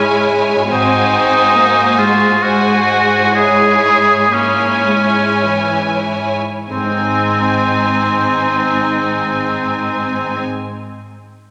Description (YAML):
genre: classical, slow romantic movement for symphony orchestra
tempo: 46-74 BPM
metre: 3/4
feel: rubato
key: Ab major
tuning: A4 = 440 Hz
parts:
  - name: warm studio violin section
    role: melody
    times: 0.0-10.4 s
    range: Ab5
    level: -23 LUFS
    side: equal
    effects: none
  - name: clear oboe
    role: second line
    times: 0.0-10.4 s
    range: C4 to Ab4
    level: -17 LUFS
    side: equal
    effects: none
  - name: rich chamber violin section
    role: second line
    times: 0.0-10.4 s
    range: Eb4 to Db5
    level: -23 LUFS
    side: equal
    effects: none
  - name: warm chamber viola section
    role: accompaniment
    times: 0.0-10.4 s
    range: Fb3 to C4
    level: -22 LUFS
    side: equal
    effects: none
  - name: concert harp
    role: arpeggios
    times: 0.0-10.8 s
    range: Ab2 to Ab5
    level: -30 LUFS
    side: equal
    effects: none
  - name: rich chamber cello section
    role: bass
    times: 0.0-10.4 s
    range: Ab2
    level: -26 LUFS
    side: equal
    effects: none
  - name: warm chamber double bass section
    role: bass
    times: 0.7-1.5, 6.7-10.4 s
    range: Ab1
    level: -30 LUFS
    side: equal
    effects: none
room: wet scoring stage reverb, RT60 2.1 s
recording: none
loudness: -14 LUFS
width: mono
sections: 0.0-6.7 A section; 6.7-10.3 B section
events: slowing down 0.0-6.7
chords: 0.0 Dbm/Ab; 0.7 Ab7; 3.4 Dbm/Ab; 6.7 Ab